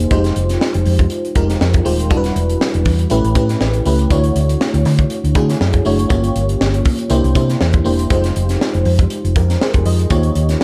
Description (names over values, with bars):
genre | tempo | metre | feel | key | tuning
polished 1980s jazz-funk pop | 120 BPM | 4/4 | swing 54% on 16ths | unclear | A4 = 440 Hz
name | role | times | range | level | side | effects
FM electric piano | accompaniment | 0.0-10.6 s | G3 to Eb5 | -21 LUFS | equal | ensemble chorus
hollow-body short-scale fingered electric bass | bass | 0.0-10.5 s | Eb1 to D3 | -18 LUFS | equal | none
crisp fusion drum kit | drums | 0.0-10.6 s | hi-hat, kick drum, snare drum | -21 LUFS | equal | none
room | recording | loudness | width
light reverb | dark, warm production | -15 LUFS | mono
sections
0.1-10.6 A section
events
none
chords
0.1 Fm9; 2.1 Em7; 3.1 A7; 4.1 Dmaj7; 6.1 Gm7b5; 7.1 C7; 8.1 Fm7; 10.1 Eb7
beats
| 0.11 0.61 1.11 1.61 | 2.11 2.61 3.11 3.61 | 4.11 4.61 5.11 5.61 | 6.11 6.61 7.11 7.61 | 8.11 8.61 9.11 9.61 | 10.11 10.61